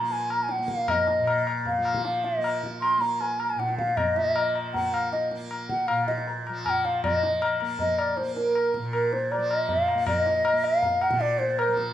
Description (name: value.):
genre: indian classical, Hindustani.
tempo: 157 BPM.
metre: 4/4.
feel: straight.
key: unclear.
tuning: A4 = 444 Hz.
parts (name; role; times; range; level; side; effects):
hollow bansuri; melody; 0.0-11.8 s; Bb4 to C6; -24 LUFS; equal; none.
tanpura; drone; 0.0-11.9 s; Bb2 to Bb3; -33 LUFS; right 1 dB; none.
tabla; percussion; 0.1-11.9 s; none; -30 LUFS; left 4 dB; none.
room: moderate recital hall reverb, RT60 1.4 s.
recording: minimal, uncompressed stereo recording.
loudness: -23 LUFS.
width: side -11 dB against mid.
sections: 0.0-7.0 A section; 7.0-11.9 B section.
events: none.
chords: none.